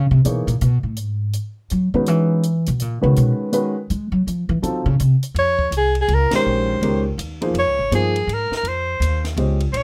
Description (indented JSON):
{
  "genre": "modal jazz",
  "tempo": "164 BPM",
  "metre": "3/4",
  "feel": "swing 63% on 8ths",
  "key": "C# dorian, Bb dorian from 5.4 s",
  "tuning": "A4 = 440 Hz",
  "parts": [
    { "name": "upright bass", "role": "bass", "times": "0.0-9.8 s", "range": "Ab1 to G#3", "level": "-21 LUFS", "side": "equal", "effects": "none" },
    { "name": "warm baby grand piano", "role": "accompaniment", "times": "0.2-9.6 s", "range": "D#3 to Eb5", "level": "-24 LUFS", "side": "equal", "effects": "none" },
    { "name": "compact cocktail drum kit", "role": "drums", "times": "0.2-9.8 s", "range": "hi-hat, kick drum, ride cymbal, snare drum", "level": "-35 LUFS", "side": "equal", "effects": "none" },
    { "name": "breathy soprano saxophone", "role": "melody", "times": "5.4-9.8 s", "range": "Ab4 to Db5", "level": "-22 LUFS", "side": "equal", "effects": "none" }
  ],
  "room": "light reverb",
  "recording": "none",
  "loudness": "-20 LUFS",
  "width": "mono",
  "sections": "0.0-5.4 A section; 5.4-9.8 B section",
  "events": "upright bass solo 0.0-5.4; band accent 6.3",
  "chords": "0.0 G#m; 1.0 C#m9; 3.2 G#m; 4.3 F7b9; 5.4 Bbm9; 7.5 Db"
}